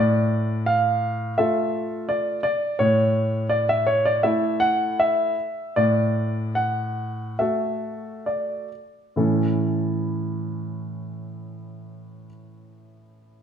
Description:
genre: classical-period piano sonatina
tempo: 65-85 BPM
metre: 4/4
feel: rubato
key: A major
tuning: A4 = 440 Hz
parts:
  - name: clear baby grand piano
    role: solo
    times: 0.0-13.4 s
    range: A2 to F#5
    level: -21 LUFS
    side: equal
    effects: none
room: wet recital hall reverb, RT60 1.3 s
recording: none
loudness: -21 LUFS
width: side -8 dB against mid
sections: 0.0-9.2 A section; 9.2-12.8 B section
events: slowing down 1.4-9.2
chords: 0.0 Dm/A; 2.8 A; 5.8 D/A; 9.2 A

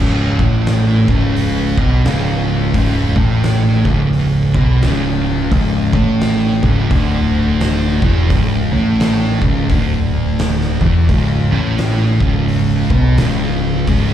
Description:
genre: stoner and doom metal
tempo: 86 BPM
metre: 4/4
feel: swing 60% on 8ths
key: unclear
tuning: A4 = 445 Hz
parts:
  - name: thick fuzz guitar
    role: riff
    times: 0.0-14.1 s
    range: C#2 to B3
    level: -20 LUFS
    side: left 9 dB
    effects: distortion
  - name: thick fuzz guitar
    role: riff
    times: 0.0-14.1 s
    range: C#2 to B3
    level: -17 LUFS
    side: right 6 dB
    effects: distortion
  - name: growling picked electric bass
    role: bass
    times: 0.0-14.1 s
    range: C#1 to B1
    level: -17 LUFS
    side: equal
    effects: overdrive
  - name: oversized low-tuned drum kit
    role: drums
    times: 0.4-14.1 s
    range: hi-hat, kick drum, snare drum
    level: -20 LUFS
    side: equal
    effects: none
room: small room ambience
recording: live gig heard through the venue's PA, club reverb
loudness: -12 LUFS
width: side -10 dB against mid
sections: 0.0-14.1 A section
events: none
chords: 0.0 C#m

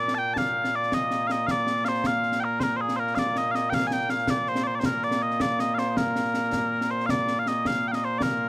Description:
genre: scottish traditional, Scottish pipe music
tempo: 107 BPM (dotted quarters)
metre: 6/8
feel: straight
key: Bb major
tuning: A4 = 440 Hz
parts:
  - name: mellow small bagpipes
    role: melody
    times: 0.0-8.5 s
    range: Bb2 to A5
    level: -24 LUFS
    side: equal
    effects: slapback echo
  - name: concert snare drum and concert bass drum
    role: drums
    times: 0.1-8.3 s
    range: none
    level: -30 LUFS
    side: equal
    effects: none
room: little or no reverb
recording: recorded outdoors, with no room sound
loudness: -23 LUFS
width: side -23 dB against mid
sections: 0.0-7.1 A section; 7.1-8.5 B section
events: none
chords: none

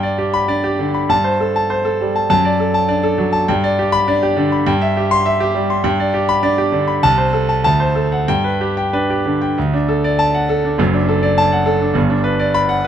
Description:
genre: classical, virtuoso piano study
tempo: 100 BPM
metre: 2/4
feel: rubato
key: G major, D major from 9.6 s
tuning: A4 = 439 Hz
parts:
  - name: clear concert grand piano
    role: solo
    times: 0.0-12.9 s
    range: F#1 to C6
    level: -14 LUFS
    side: equal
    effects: none
room: light reverb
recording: close, detailed microphones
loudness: -14 LUFS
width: side -9 dB against mid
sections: 0.0-9.6 A section; 9.6-12.9 B section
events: none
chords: 0.0 G; 1.1 Am7/G; 2.3 D/F#; 3.5 G; 4.7 C/G; 5.8 G; 7.0 Am/C; 7.6 D7; 8.3 G; 9.6 D; 10.8 D/F#; 12.0 Gmaj7

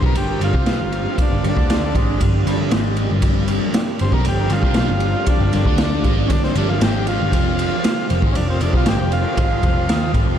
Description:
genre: psychedelic rock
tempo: 117 BPM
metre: 4/4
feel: straight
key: unclear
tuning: A4 = 441 Hz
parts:
  - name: combo organ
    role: melody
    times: 0.0-10.1 s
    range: C4 to C5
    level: -24 LUFS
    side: equal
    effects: ping-pong delay
  - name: soft string machine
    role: sustained chords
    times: 0.0-10.4 s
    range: C3 to C5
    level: -27 LUFS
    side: right 3 dB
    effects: ensemble chorus
  - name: thick fuzz guitar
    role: riff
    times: 0.0-10.4 s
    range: F2 to Eb4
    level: -24 LUFS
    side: left 1 dB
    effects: distortion, phaser
  - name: picked electric bass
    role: bass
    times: 0.0-10.4 s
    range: F1 to Eb2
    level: -21 LUFS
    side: equal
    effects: none
  - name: tanpura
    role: drone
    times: 0.0-10.4 s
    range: G2 to G3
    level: -32 LUFS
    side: left 1 dB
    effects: none
  - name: raw garage drum kit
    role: drums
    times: 0.0-10.3 s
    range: kick drum, ride cymbal, snare drum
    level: -20 LUFS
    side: equal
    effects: none
room: moderate huge ambient reverb, RT60 7.4 s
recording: dreamy mix soaked in reverb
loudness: -16 LUFS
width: side -9 dB against mid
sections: 0.0-10.4 A section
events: transistor combo organ solo 0.0-10.4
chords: 0.0 G7sus4; 7.3 F5

